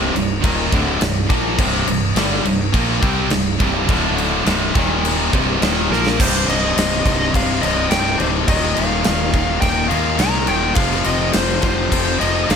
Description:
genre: hard rock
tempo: 104 BPM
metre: 4/4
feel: straight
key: C dorian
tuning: A4 = 438 Hz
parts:
  - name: distorted electric guitar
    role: riff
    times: 0.0-12.6 s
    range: C2 to C4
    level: -22 LUFS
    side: left 12 dB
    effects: overdrive
  - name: high-gain distorted guitar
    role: riff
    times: 0.0-6.2 s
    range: C2 to C4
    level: -22 LUFS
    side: right 10 dB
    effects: distortion
  - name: tight distorted guitar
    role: riff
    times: 0.0-12.6 s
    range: C2 to C4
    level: -24 LUFS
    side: right 1 dB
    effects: distortion
  - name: fuzz fingered electric bass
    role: bass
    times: 0.0-12.6 s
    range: C1 to Eb2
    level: -23 LUFS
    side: right 1 dB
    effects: overdrive
  - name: huge arena drum kit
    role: drums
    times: 0.2-12.6 s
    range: crash cymbal, kick drum, snare drum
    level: -19 LUFS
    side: equal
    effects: none
  - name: bluesy overdriven lead guitar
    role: melody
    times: 5.9-12.6 s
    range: Bb4 to Bb5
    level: -22 LUFS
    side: right 1 dB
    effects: distortion, digital delay
room: light reverb, studio ambience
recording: none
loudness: -15 LUFS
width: side -7 dB against mid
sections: 0.0-6.2 A section; 6.2-12.6 B section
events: drum fill 5.9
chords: 0.0 Cm; 3.9 D5; 4.5 C5; 4.7 Eb5; 5.3 Cm; 8.5 Eb5; 10.8 F5

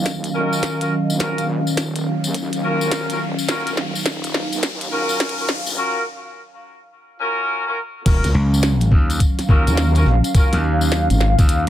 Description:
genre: glitch hop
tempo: 105 BPM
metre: 4/4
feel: swing 64% on 16ths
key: Eb minor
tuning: A4 = 440 Hz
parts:
  - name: warbly tape-like pad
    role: sustained chords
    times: 0.0-11.7 s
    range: Eb3 to F5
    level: -25 LUFS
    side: equal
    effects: chorus, built-in reverb, sidechain pumping
  - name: wobble bass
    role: bass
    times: 0.0-11.4 s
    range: Eb1 to Eb2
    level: -22 LUFS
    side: equal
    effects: chorus, overdrive, high-pass filter
  - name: riser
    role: sound effects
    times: 1.2-5.8 s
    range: none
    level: -31 LUFS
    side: left 2 dB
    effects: none
  - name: airy breathy pad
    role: texture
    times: 0.0-11.7 s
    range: Gb3 to F5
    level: -27 LUFS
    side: right 2 dB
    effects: chorus, sidechain pumping
  - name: electronic kick drum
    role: drums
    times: 0.1-11.5 s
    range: none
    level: -16 LUFS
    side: equal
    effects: high-pass filter on kick
  - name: glitchy drum kit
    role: drums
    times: 0.1-11.6 s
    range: crash cymbal, hi-hat, snare drum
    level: -24 LUFS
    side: equal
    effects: none
  - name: tambourine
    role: percussion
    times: 0.1-11.6 s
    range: none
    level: -30 LUFS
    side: left 5 dB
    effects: none
  - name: mellow horn section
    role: stabs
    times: 0.3-10.6 s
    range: Db4 to Bb4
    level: -24 LUFS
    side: left 1 dB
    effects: sidechain pumping, tape echo
  - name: gritty slap bass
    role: bass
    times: 8.3-11.6 s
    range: Db2 to Eb2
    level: -18 LUFS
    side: equal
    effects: overdrive
room: light reverb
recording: high-pass filter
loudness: -16 LUFS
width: side -12 dB against mid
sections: 0.0-8.1 A section; 8.1-11.7 B section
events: build-up 0.0-8.1; drum fill 0.0-5.8; riser 1.2-5.8; break 5.8-8.1; drop 8.1-11.7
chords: 0.0 Ebm9

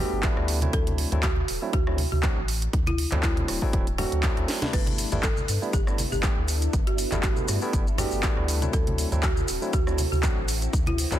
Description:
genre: deep house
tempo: 120 BPM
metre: 4/4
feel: swing 55% on 16ths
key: G major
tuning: A4 = 444 Hz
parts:
  - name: folk marimba with medium hard mallets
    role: melody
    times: 0.0-11.1 s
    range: E4 to B4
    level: -33 LUFS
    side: right 2 dB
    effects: tape echo
  - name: barky tine electric piano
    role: stabs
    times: 0.0-11.2 s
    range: F#3 to G4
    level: -32 LUFS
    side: equal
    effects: medium stereo tremolo, sidechain pumping, tape echo
  - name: warm sub bass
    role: bass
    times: 0.0-11.2 s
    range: D1 to G2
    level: -28 LUFS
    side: equal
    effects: sidechain pumping
  - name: electronic kick drum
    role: drums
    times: 0.2-10.8 s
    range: none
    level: -26 LUFS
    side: equal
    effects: overdrive
  - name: house drum kit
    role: drums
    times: 0.2-11.2 s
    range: crash cymbal, handclaps, hi-hat, rim click, snare drum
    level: -31 LUFS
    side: right 1 dB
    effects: overdrive
  - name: congas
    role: percussion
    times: 0.6-11.2 s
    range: none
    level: -33 LUFS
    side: right 1 dB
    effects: none
  - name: soft string machine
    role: sustained chords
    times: 5.4-11.2 s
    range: B3 to B4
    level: -36 LUFS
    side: left 1 dB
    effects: phaser, ensemble chorus, sidechain pumping
  - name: maracas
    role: percussion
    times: 4.7-11.2 s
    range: none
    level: -36 LUFS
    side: left 3 dB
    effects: none
room: digital ambience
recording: dense, heavily limited modern master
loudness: -22 LUFS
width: side -12 dB against mid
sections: 0.0-11.2 A section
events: drum fill 4.5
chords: 0.0 G69; 0.7 D9; 4.7 G69; 8.7 D9

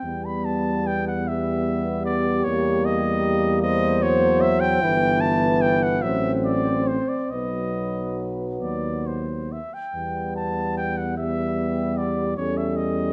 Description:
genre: classical, hymn-like piece for brass band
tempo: 45-52 BPM (dotted quarters)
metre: 6/8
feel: rubato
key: E minor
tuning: A4 = 441 Hz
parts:
  - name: warm cornet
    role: melody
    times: 0.0-13.1 s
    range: C5 to B5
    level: -29 LUFS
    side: equal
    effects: none
  - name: mellow trombone section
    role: accompaniment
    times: 0.0-13.1 s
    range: Bb3 to C#4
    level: -32 LUFS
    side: equal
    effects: none
  - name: warm euphonium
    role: accompaniment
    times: 0.0-13.1 s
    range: E3 to G3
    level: -30 LUFS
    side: equal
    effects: none
  - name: mellow tuba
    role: bass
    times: 0.0-13.1 s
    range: G1 to E2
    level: -30 LUFS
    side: equal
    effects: none
  - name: mellow French horn section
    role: second line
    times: 1.3-13.1 s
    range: G4 to C5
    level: -29 LUFS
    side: equal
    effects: none
room: moderate recital hall reverb, RT60 1.5 s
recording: close, detailed microphones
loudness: -23 LUFS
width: mono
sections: 0.0-13.1 A section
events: none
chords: 0.0 Em; 2.5 Edim; 4.8 Em/G; 6.0 F#dim/A; 7.3 B; 9.9 Em; 12.4 A7#11/E

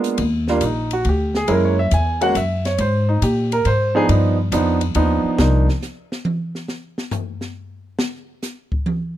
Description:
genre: jazz piano trio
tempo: 138 BPM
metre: 3/4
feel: swing 68% on 8ths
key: unclear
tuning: A4 = 439 Hz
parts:
  - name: warm concert grand piano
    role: melody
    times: 0.0-5.7 s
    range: F3 to Ab5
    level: -19 LUFS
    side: right 2 dB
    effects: none
  - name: open jazz drum kit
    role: drums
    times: 0.0-9.0 s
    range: hi-hat, kick drum, ride cymbal, snare drum, toms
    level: -26 LUFS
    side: equal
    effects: none
  - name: upright bass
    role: bass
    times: 0.2-5.7 s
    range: Bb1 to Bb2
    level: -19 LUFS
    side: left 1 dB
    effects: none
room: studio reverb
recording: dry, close 1970s-style studio recording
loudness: -17 LUFS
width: side -12 dB against mid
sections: 0.2-9.2 A section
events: grand piano solo 0.2-9.2; drum solo 5.4-9.2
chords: 0.2 Ebmaj7; 1.5 Gb9; 2.8 Absus2; 4.1 G7b13; 5.4 C7sus4; 6.7 N.C.

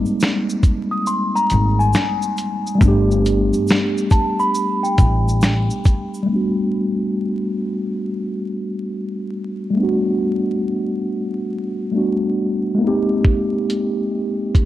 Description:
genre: lo-fi hip hop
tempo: 69 BPM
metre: 4/4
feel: swing 65% on 16ths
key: G major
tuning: A4 = 443 Hz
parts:
  - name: mellow tine electric piano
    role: accompaniment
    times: 0.0-14.7 s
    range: G3 to G4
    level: -19 LUFS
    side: equal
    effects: medium stereo tremolo, low-pass filter
  - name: tube shaker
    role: percussion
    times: 0.1-6.3 s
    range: none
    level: -43 LUFS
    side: right 4 dB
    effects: none
  - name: dusty soul sampler-style drum kit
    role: drums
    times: 0.2-6.1, 13.2-14.7 s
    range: finger snaps, hi-hat, kick drum, shaker, snare drum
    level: -16 LUFS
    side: equal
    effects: none
  - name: celesta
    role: second line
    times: 0.9-6.1 s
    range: G5 to Eb6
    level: -21 LUFS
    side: left 2 dB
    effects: low-pass filter, tape echo
  - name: upright bass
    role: bass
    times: 1.5-5.7 s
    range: G1 to A1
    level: -18 LUFS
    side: equal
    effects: none
room: light reverb, small room reverb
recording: vinyl crackle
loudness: -17 LUFS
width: side -14 dB against mid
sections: 0.0-6.3 A section; 6.3-14.7 B section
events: filter sweep on tine electric piano 6.3-14.7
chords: 0.0 Abmaj9; 2.8 Gadd9; 6.3 Gmaj9; 12.8 Abmaj9

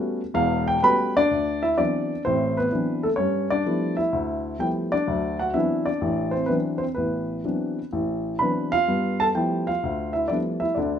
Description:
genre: solo jazz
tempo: 127 BPM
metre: 4/4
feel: swing 68% on 8ths, rubato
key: unclear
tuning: A4 = 440 Hz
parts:
  - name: dark baby grand piano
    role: solo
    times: 0.0-11.0 s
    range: E1 to B5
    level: -21 LUFS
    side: equal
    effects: none
room: moderate large studio reverb, RT60 0.9 s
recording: minimal, uncompressed stereo recording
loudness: -21 LUFS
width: side -8 dB against mid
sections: 0.0-1.3 A section; 1.3-11.0 B section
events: grand piano solo 0.0-1.3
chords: 0.0 A13; 1.3 D13; 3.2 G13; 5.1 D13; 8.9 G13

